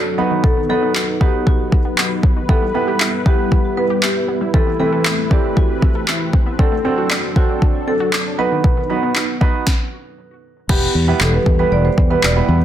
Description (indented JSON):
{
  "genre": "dance-pop",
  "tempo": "117 BPM",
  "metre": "4/4",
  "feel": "straight",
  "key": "E minor",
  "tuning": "A4 = 440 Hz",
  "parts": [
    { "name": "marimba with medium mallets", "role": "melody", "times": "0.0-12.6 s", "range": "F#4 to D5", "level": "-22 LUFS", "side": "equal", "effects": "tape echo" },
    { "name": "sweeping resonant pad", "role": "sustained chords", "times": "0.0-12.6 s", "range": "B2 to B4", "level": "-24 LUFS", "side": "left 1 dB", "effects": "chorus, sidechain pumping" },
    { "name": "warm concert grand piano", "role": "accompaniment", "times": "0.2-12.6 s", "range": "E3 to D5", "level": "-22 LUFS", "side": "right 6 dB", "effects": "sidechain pumping" },
    { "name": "wide unison pluck", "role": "arpeggios", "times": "0.2-9.5 s", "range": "B2 to E5", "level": "-27 LUFS", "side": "left 1 dB", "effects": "sidechain pumping, tape echo" },
    { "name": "smooth R&B drum kit", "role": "drums", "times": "0.4-12.4 s", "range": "crash cymbal, handclaps, kick drum, snare drum", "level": "-16 LUFS", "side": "equal", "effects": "overdrive" },
    { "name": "fingered electric bass", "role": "bass", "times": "10.7-12.6 s", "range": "E1 to E2", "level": "-16 LUFS", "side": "left 1 dB", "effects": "sidechain pumping" }
  ],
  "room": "light reverb",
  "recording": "dense, heavily limited modern master",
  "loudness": "-14 LUFS",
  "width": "side -11 dB against mid",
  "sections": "0.0-10.7 A section; 10.7-12.6 B section",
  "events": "stop 9.7-10.7",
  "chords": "0.2 B; 2.5 Em; 4.5 Amadd9/E; 6.6 D7; 8.4 B; 10.7 Em"
}